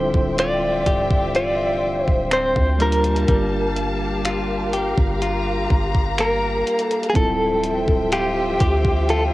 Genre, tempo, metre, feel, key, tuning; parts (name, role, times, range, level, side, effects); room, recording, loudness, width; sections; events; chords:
contemporary R&B; 62 BPM; 4/4; straight; D minor; A4 = 440 Hz
direct-recorded clean electric guitar; melody; 0.0-9.2 s; G4 to D5; -21 LUFS; equal; tremolo, cassette tape, analog delay
mellow tine electric piano; accompaniment; 0.0-9.3 s; G3 to Bb4; -28 LUFS; right 1 dB; medium stereo tremolo, cassette tape
warm studio string section; sustained chords; 0.0-9.3 s; F3 to Bb5; -27 LUFS; left 1 dB; cassette tape
direct-recorded clean electric guitar; arpeggios; 0.0-9.3 s; D3 to G4; -26 LUFS; left 3 dB; cassette tape
warm 808-style bass; bass; 0.0-9.3 s; C1 to D2; -25 LUFS; equal
clean 12-bit digital drum machine; drums; 0.1-9.3 s; finger snaps, hi-hat, kick drum; -21 LUFS; equal; cassette tape
light reverb; home recording on cassette; -17 LUFS; side -17 dB against mid
0.0-9.3 A section
0.0 Dm11; 2.8 Gm9; 7.2 Dm11